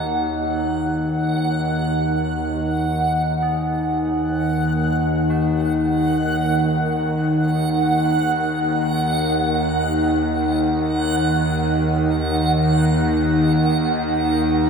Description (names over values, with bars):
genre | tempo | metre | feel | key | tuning
dark ambient drone | free time | none | none | Eb minor | A4 = 441 Hz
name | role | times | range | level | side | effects
tubular bells | arpeggios | 0.0-14.7 s | Db4 to Ab4 | -38 LUFS | left 1 dB | ping-pong delay
bowed-like drone | drone | 0.0-14.7 s | Eb2 to Eb3 | -19 LUFS | equal | built-in reverb
backwards swelling texture | texture | 0.0-14.7 s | Gb5 | -24 LUFS | right 2 dB | built-in reverb
room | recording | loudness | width
wet cathedral reverb, RT60 5.0 s | none | -17 LUFS | side -6 dB against mid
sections
0.0-14.7 A section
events
fade-in on tubular bells 0.0-14.7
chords
0.0 Ebm